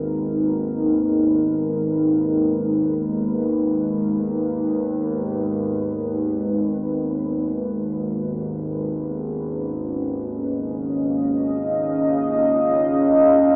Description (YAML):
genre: dark ambient drone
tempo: free time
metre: none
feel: none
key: G# dorian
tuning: A4 = 440 Hz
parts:
  - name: deep dark ambient pad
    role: sustained chords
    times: 0.0-13.6 s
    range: G#3 to E#5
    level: -20 LUFS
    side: equal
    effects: chorus, built-in reverb
  - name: analog drone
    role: drone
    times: 0.0-13.6 s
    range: G#1 to D#2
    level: -25 LUFS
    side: equal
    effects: chorus
room: wet lush hall reverb, RT60 2.7 s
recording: dreamy mix soaked in reverb, cassette tape, small speaker sound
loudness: -19 LUFS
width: side -29 dB against mid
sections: 0.0-13.6 A section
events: none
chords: 0.0 G#m